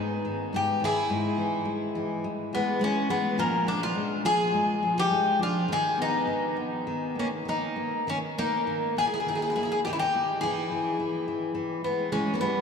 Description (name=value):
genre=fado-style ballad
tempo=104 BPM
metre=4/4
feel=rubato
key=unclear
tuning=A4 = 441 Hz
part: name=Greek bouzouki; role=melody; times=0.0-12.6 s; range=A#3 to G#4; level=-27 LUFS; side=left 2 dB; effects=none
part: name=picked plugged-in twelve-string acoustic guitar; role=second line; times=0.0-12.6 s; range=E#3 to E#4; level=-32 LUFS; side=right 1 dB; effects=none
part: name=nylon-string guitar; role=accompaniment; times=0.0-12.6 s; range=G#2 to B3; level=-32 LUFS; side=left 2 dB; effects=none
room=wet cathedral reverb, RT60 5.4 s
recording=in a vast, echoing space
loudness=-25 LUFS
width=side -6 dB against mid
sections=0.0-12.6 A section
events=none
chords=0.0 G#5; 1.1 E/G#; 3.4 A#5; 5.7 G#m/D#; 6.9 D#5; 10.4 N.C.